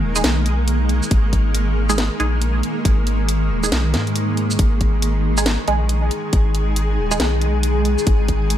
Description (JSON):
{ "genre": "deep dubstep", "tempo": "138 BPM", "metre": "4/4", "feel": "swing 61% on 16ths, half-time", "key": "G# minor", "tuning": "A4 = 441 Hz", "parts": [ { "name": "granular cloud pad", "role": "sustained chords", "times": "0.0-8.6 s", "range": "D#3 to G#4", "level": "-22 LUFS", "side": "equal", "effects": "built-in reverb" }, { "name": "saturated sub bass", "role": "bass", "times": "0.0-8.6 s", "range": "D#1 to G#2", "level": "-19 LUFS", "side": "equal", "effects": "none" }, { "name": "filtered dub chord stab", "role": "stabs", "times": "0.2-7.2 s", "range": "G#3 to G#4", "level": "-25 LUFS", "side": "right 3 dB", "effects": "phaser, dub echo" }, { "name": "garage drum kit", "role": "drums", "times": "0.2-8.6 s", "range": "hi-hat, shaker, snare drum", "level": "-22 LUFS", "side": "equal", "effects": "studio reverb" }, { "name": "electronic kick drum", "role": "drums", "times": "1.1-8.4 s", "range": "none", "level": "-18 LUFS", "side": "equal", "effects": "studio reverb" } ], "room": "little or no reverb", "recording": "none", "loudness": "-16 LUFS", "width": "side -11 dB against mid", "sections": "0.0-8.6 A section", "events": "none", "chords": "0.0 G#5" }